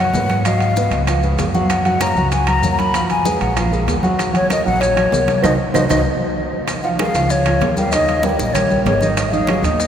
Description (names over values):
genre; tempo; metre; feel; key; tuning
Afro-Cuban jazz; 192 BPM; 4/4; straight; Eb minor; A4 = 438 Hz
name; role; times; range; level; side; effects
breathy mellow silver concert flute; melody; 0.0-9.9 s; Db5 to Cb6; -19 LUFS; left 2 dB; none
dark upright piano; accompaniment; 0.0-9.9 s; Bb2 to F#5; -20 LUFS; right 2 dB; none
upright bass; bass; 0.0-9.9 s; Ab1 to Ab2; -21 LUFS; equal; none
bongos; percussion; 0.1-9.9 s; none; -27 LUFS; left 4 dB; none
congas; percussion; 0.1-9.9 s; none; -26 LUFS; left 1 dB; none
maracas; percussion; 0.1-9.9 s; none; -31 LUFS; left 3 dB; none
timbales; percussion; 0.1-9.8 s; none; -24 LUFS; right 4 dB; none
claves; percussion; 0.4-9.6 s; none; -32 LUFS; right 4 dB; none
room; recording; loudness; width
wet cathedral reverb, RT60 6.6 s; recorded in a church or concert hall; -14 LUFS; side -9 dB against mid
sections
0.0-6.7 A section; 6.7-9.9 B section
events
band accent 5.4-6.7; drum fill 5.8-6.7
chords
0.4 Abm7; 1.1 Db7; 1.7 Gbmaj7; 2.9 Fdim; 3.6 Bb5; 4.2 Ebm7; 5.4 Cm7b5; 6.1 N.C.; 6.7 Bbm7; 7.9 Eb7; 9.2 Ab7(no3)